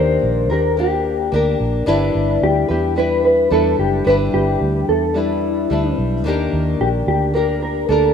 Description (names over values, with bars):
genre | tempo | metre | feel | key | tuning
indie pop, bedroom pop | 110 BPM | 4/4 | straight | unclear | A4 = 440 Hz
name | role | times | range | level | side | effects
mellow electric guitar | melody | 0.0-8.1 s | E4 to C5 | -18 LUFS | equal | analog chorus, tape echo
flamenco guitar | accompaniment | 0.0-8.1 s | Eb3 to B4 | -20 LUFS | left 2 dB | lush chorus, warbly pitch drift
vintage muted fingered electric bass | bass | 0.0-8.1 s | F#1 to E2 | -21 LUFS | right 1 dB | none
room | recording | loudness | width
moderate plate reverb, RT60 3.1 s | rough home demo mix | -15 LUFS | side -7 dB against mid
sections
0.0-8.1 A section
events
none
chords
0.0 Ebmaj7; 1.9 G6; 6.2 Ebmaj7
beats
0.23 0.78 1.32 | 1.87 2.42 2.96 3.51 | 4.06 4.61 5.15 5.70 | 6.25 6.79 7.34 7.89